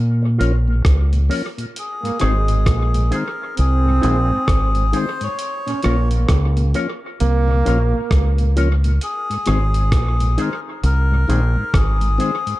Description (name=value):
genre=roots reggae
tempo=66 BPM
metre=4/4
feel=swing 62% on 16ths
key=Ab major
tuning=A4 = 441 Hz
part: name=deep dub fingered electric bass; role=bass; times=0.0-12.2 s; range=Ab1 to Bb2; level=-16 LUFS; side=equal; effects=none
part: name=electric guitar with an envelope filter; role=accompaniment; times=0.2-12.4 s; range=Eb4 to Db5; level=-30 LUFS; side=equal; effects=tape echo
part: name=mellow tonewheel organ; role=accompaniment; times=0.2-12.5 s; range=Ab2 to Db4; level=-26 LUFS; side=left 3 dB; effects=slow rotary speaker
part: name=dusty soul sampler-style drum kit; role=drums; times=0.4-12.6 s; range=hi-hat, kick drum, rim click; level=-22 LUFS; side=equal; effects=dub echo
part: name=melodica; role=melody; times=1.8-12.6 s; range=Ab4 to Db5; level=-24 LUFS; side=left 2 dB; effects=tape echo
part: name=warm trombone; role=second line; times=2.0-8.5 s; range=Ab3 to Db4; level=-25 LUFS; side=right 4 dB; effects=tape echo
room=light reverb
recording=echo-heavy mix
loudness=-15 LUFS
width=side -17 dB against mid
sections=0.0-12.6 A section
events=none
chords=0.0 Bbm; 1.8 Ab; 5.4 Bbm; 9.0 Ab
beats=0.85 | 1.75 2.66 3.57 4.48 | 5.39 6.29 7.20 8.11 | 9.02 9.92 10.83 11.74